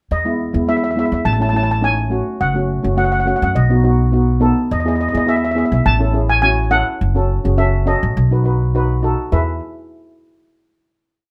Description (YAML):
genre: calypso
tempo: 104 BPM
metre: 4/4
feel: straight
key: E major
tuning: A4 = 440 Hz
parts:
  - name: steel pan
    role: melody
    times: 0.1-9.6 s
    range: D#5 to A5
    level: -22 LUFS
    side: equal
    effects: none
  - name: upright bass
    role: bass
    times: 0.1-9.6 s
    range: F#1 to F#2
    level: -20 LUFS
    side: equal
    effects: none
  - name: steel pan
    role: accompaniment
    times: 0.2-9.6 s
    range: G#3 to B4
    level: -22 LUFS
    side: equal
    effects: none
room: moderate studio reverb, RT60 0.5 s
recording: none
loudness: -16 LUFS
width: mono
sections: 0.1-9.3 verse; 9.3-11.3 final chord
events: none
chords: 0.1 E; 1.3 A; 2.4 F#m; 3.6 B; 4.7 E; 5.9 A; 7.0 F#m; 8.2 B; 9.3 E